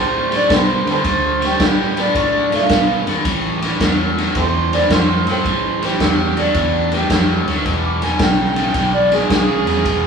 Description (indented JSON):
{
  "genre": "electric blues shuffle",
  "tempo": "109 BPM",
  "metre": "4/4",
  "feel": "swing 67% on 8ths",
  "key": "A minor",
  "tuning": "A4 = 440 Hz",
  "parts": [
    { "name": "overdriven harmonica", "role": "melody", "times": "0.0-10.1 s", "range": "A3 to D6", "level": "-19 LUFS", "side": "right 2 dB", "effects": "none" },
    { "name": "cranked stack guitar", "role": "riff", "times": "0.0-10.1 s", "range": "E2 to B3", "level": "-20 LUFS", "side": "left 2 dB", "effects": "overdrive" },
    { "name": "vintage muted fingered electric bass", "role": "bass", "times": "0.0-10.1 s", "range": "E1 to D3", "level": "-23 LUFS", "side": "equal", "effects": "none" },
    { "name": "raw garage drum kit", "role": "drums", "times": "0.3-10.0 s", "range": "kick drum, ride cymbal, snare drum", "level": "-18 LUFS", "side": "equal", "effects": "none" }
  ],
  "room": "moderate studio reverb, RT60 0.6 s",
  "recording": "band playing live in one room, small room ambience",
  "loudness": "-14 LUFS",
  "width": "side -6 dB against mid",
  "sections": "0.0-10.1 A section",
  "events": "none",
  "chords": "0.0 D7(no3); 3.2 Am7; 7.6 E",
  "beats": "0.50 | 1.05 1.60 2.15 2.70 | 3.25 3.80 4.35 4.90 | 5.45 6.00 6.55 7.10 | 7.65 8.20 8.75 9.30 | 9.85"
}